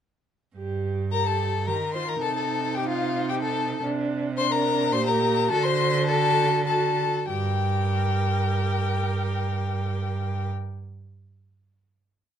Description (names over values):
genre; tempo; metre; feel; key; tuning
quick classical-period movement for string quartet; 95-112 BPM; 3/4; rubato; G minor; A4 = 439 Hz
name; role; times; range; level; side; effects
rich viola; accompaniment; 0.6-10.5 s; D4 to Bb4; -30 LUFS; right 4 dB; none
clear cello; bass; 0.6-10.5 s; G2 to Eb3; -27 LUFS; right 4 dB; none
warm violin; melody; 1.1-10.5 s; F5 to C6; -27 LUFS; left 9 dB; none
clear violin; second line; 1.1-10.5 s; F4 to C5; -30 LUFS; left 2 dB; none
room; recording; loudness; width
light reverb; dark, warm production; -22 LUFS; side -9 dB against mid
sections
0.6-7.3 A section; 7.3-10.9 final chord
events
slowing down 3.0-7.3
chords
0.6 Gmadd9; 1.7 Eb5; 2.2 Cm6; 3.8 Bbadd9/C; 4.9 Gm/Bb; 5.5 D; 7.3 Gm